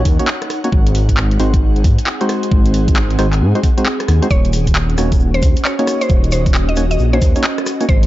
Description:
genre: UK garage, two-step garage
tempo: 134 BPM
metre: 4/4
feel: swing 63% on 16ths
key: Eb dorian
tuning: A4 = 440 Hz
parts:
  - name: percussive organ stab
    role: stabs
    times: 0.0-7.9 s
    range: Ab3 to Db5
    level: -20 LUFS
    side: equal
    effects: chorus, tape echo
  - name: dark detuned saw bass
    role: bass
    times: 0.0-8.1 s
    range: Eb1 to Ab2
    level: -15 LUFS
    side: equal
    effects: none
  - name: ethereal airy pad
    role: texture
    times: 0.0-8.1 s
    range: C4 to Gb5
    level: -24 LUFS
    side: right 1 dB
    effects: ensemble chorus, built-in reverb, sidechain pumping
  - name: electronic kick drum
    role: drums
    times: 0.1-8.0 s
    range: none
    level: -14 LUFS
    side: equal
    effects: none
  - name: garage drum kit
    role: drums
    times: 0.1-8.1 s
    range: handclaps, hi-hat, rim click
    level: -22 LUFS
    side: equal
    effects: none
  - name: mallet-like synth pluck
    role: melody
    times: 4.3-8.1 s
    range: C5 to Eb5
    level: -23 LUFS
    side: right 1 dB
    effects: chorus, vintage 12-bit sampler grit, tape echo
  - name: tube shaker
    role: percussion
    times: 4.3-8.0 s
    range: none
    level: -32 LUFS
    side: left 4 dB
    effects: none
room: light reverb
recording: dark, warm production, nothing above 7.6 kHz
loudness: -12 LUFS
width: side -15 dB against mid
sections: 0.0-8.1 A section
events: none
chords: 0.0 Ebm7; 0.7 Ab7; 4.3 Ebm7

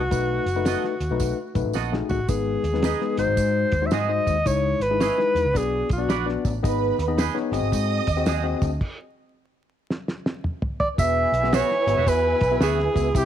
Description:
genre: uptempo 1960s-style soul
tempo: 110 BPM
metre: 4/4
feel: swing 64% on 8ths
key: E major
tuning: A4 = 438 Hz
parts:
  - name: clear alto saxophone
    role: melody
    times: 0.0-6.4, 10.8-13.3 s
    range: F#4 to E5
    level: -23 LUFS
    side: equal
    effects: none
  - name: vintage muted picked electric bass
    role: bass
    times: 0.0-13.3 s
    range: E1 to G#2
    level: -26 LUFS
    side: equal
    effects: none
  - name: tine electric piano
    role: accompaniment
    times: 0.1-13.3 s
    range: G#3 to E5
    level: -27 LUFS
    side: left 9 dB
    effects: medium stereo tremolo
  - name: cloth-damped thuddy drum kit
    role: drums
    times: 0.1-13.3 s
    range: crash cymbal, hi-hat, kick drum, snare drum, toms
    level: -26 LUFS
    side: equal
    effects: none
  - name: tambourine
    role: percussion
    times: 0.1-13.3 s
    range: none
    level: -42 LUFS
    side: right 15 dB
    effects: none
  - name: clean electric guitar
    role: stabs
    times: 0.7-12.8 s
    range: B3 to E5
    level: -31 LUFS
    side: right 14 dB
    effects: lush chorus
  - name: warm studio string section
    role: second line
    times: 6.6-13.3 s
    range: E4 to D#6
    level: -28 LUFS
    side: right 11 dB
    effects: none
room: light reverb, small room ambience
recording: 1960s-style stereo with parts hard left and right, vinyl crackle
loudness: -20 LUFS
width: side -10 dB against mid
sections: 0.0-2.3 A section; 2.3-11.0 B section; 11.0-13.3 C section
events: drum fill 1.7-2.3, 9.9-11.0; stop 8.8-11.0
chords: 0.0 B7; 2.3 G#m; 3.1 G#7; 4.5 C#madd9; 5.6 Bm; 6.6 G#m; 7.5 G#7; 8.8 N.C.; 11.0 Eadd9

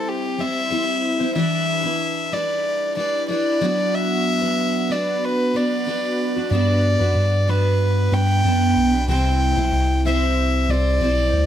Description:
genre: pop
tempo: 93 BPM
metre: 4/4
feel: straight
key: unclear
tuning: A4 = 440 Hz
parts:
  - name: warm violin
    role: melody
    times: 0.0-11.5 s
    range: G4 to G5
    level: -22 LUFS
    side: equal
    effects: plate reverb
  - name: picked steel-string acoustic guitar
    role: accompaniment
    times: 0.0-11.5 s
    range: C3 to C5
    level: -22 LUFS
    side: equal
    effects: double-tracked left and right, plate reverb
  - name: mellow tine electric piano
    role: bass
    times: 6.5-11.5 s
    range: B1 to G2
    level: -19 LUFS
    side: equal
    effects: medium stereo tremolo
room: moderate studio ambience, RT60 0.5 s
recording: none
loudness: -18 LUFS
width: side -10 dB against mid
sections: 0.0-11.5 A section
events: none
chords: 0.0 C; 1.4 Em7; 3.6 Bm/F#; 6.5 Gmaj7; 9.1 C

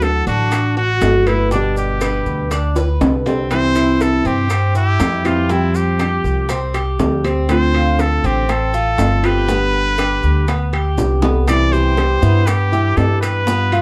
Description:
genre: latin, Cuban son and guajira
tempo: 120 BPM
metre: 4/4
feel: straight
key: C major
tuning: A4 = 440 Hz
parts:
  - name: trumpet with straight mute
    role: melody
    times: 0.0-13.8 s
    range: D4 to D5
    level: -23 LUFS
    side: equal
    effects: none
  - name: nylon-string guitar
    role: accompaniment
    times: 0.0-13.8 s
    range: B2 to G4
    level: -22 LUFS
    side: equal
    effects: none
  - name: Cuban tres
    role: arpeggios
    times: 0.0-13.8 s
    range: B3 to B4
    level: -24 LUFS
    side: equal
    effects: none
  - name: upright bass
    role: bass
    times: 0.0-13.8 s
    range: G1 to G2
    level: -20 LUFS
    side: equal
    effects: none
  - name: bongos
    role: percussion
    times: 0.0-13.7 s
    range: none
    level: -28 LUFS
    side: equal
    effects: none
  - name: maracas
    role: percussion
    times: 0.0-13.8 s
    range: none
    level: -41 LUFS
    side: equal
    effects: none
  - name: timbales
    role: percussion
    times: 0.0-13.8 s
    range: none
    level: -25 LUFS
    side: equal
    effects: none
room: light reverb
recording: dark, warm production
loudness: -16 LUFS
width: mono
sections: 0.0-11.5 A section; 11.5-13.8 B section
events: drum fill 2.8-3.5, 11.0-11.5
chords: 0.0 Dadd9; 1.5 G; 3.5 C; 5.5 Fsus2; 7.5 Dm7; 9.5 G; 11.5 Cmaj7

